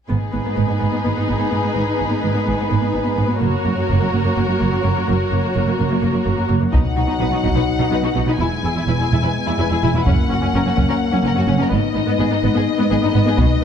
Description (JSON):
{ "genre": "cinematic, epic orchestral film score", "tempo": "253 BPM (eighths)", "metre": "7/8", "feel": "straight", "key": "G# minor", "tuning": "A4 = 440 Hz", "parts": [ { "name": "warm symphonic violin section", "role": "second line", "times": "0.1-13.4 s", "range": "B3 to C#5", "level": "-25 LUFS", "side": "left 4 dB", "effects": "none" }, { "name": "warm symphonic viola section", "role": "accompaniment", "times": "0.1-13.6 s", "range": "A#3 to F#4", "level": "-22 LUFS", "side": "equal", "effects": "none" }, { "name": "dark symphonic double bass section", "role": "bass", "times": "0.1-13.4 s", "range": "E1 to B1", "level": "-22 LUFS", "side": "right 3 dB", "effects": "none" }, { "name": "rich symphonic cello section", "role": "bass", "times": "0.1-13.6 s", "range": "E2 to B2", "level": "-22 LUFS", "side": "right 2 dB", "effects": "none" }, { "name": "warm symphonic violin section", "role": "melody", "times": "6.7-13.6 s", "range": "D#5 to G#5", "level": "-25 LUFS", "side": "left 4 dB", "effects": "none" }, { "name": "dark French horn section", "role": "sustained chords", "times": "6.7-13.6 s", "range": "F#3 to D#4", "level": "-22 LUFS", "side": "left 6 dB", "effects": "none" }, { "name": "taiko ensemble", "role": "drums", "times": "6.7-13.6 s", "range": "none", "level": "-20 LUFS", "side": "left 1 dB", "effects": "none" } ], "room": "wet scoring stage reverb, RT60 1.5 s", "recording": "dark, warm production, faint mains hum", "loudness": "-16 LUFS", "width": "side -8 dB against mid", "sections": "0.1-6.7 A section; 6.7-13.6 B section", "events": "build-up 6.7-13.6", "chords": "0.1 G#m; 3.4 F#; 6.7 B; 8.4 E; 10.1 F#; 11.7 G#m" }